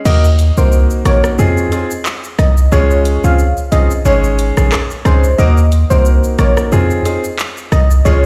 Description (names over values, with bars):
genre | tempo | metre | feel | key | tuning
dancehall | 90 BPM | 4/4 | swing 56% on 16ths | Eb dorian | A4 = 441 Hz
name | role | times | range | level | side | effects
glassy wavetable pluck | melody | 0.1-8.3 s | C5 to F5 | -21 LUFS | equal | chorus, tape echo
clear grand piano | accompaniment | 0.1-8.3 s | Ab3 to Bb4 | -20 LUFS | equal | none
warm 808-style bass | bass | 0.1-8.3 s | Ab1 to F2 | -13 LUFS | equal | none
afro-pop drum kit | drums | 0.1-8.2 s | crash cymbal, handclaps, hi-hat, rim click, shaker | -25 LUFS | equal | none
room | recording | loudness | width
little or no reverb | played on a big sound system in a bare room, large studio reverb | -13 LUFS | mono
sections
0.1-8.3 A section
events
break 0.1-8.3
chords
0.1 Ebm; 1.4 Fm7; 2.7 Dbmaj7; 4.1 Absus4; 5.4 Ebm; 6.7 Fm7